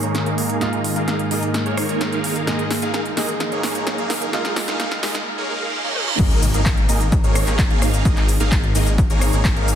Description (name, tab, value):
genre	EDM, festival progressive house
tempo	129 BPM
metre	4/4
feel	straight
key	unclear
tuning	A4 = 438 Hz
part	warm grand piano	accompaniment	0.0-6.2 s	Ab2 to Ab4	-27 LUFS	right 2 dB	sidechain pumping, tape echo
part	lush unison pad	sustained chords	0.0-5.2 s	Ab2 to Bb3	-26 LUFS	equal	chorus, sidechain pumping
part	supersaw chords	riff	0.0-9.8 s	Bb3 to F5	-24 LUFS	right 1 dB	phaser, vintage 12-bit sampler grit, sidechain pumping, low-pass filter, tape echo
part	big-room dance drum kit	drums	0.0-9.8 s	crash cymbal, handclaps, hi-hat, rim click, shaker, snare drum, toms	-25 LUFS	equal	overdrive, high-pass filter on hats, high-pass filter on snare, high-pass filter on toms, high-pass filter on cymbals, high-pass filter on perc, high-pass filter on room
part	riser, reverse cymbal and impact	sound effects	2.2-8.1 s	none	-30 LUFS	right 1 dB	none
part	wide detuned saw bass	bass	6.2-9.8 s	Ab1	-20 LUFS	left 1 dB	chorus, sidechain pumping
part	electronic kick drum	drums	6.2-9.5 s	none	-19 LUFS	equal	overdrive
room	light reverb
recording	dense, heavily limited modern master, high-pass filter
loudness	-17 LUFS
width	side -9 dB against mid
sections	0.0-6.2 A section; 6.2-9.8 B section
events	build-up 0.0-6.2; drum fill 0.0-5.3, 6.0; filter sweep on supersaw synth 0.0-6.2; filter sweep on analog synth pad 0.0-6.2; filter sweep 0.0-6.2; reverse cymbal 5.3-6.2; drop 6.2-9.8; impact 6.2-8.1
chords	0.0 Absus2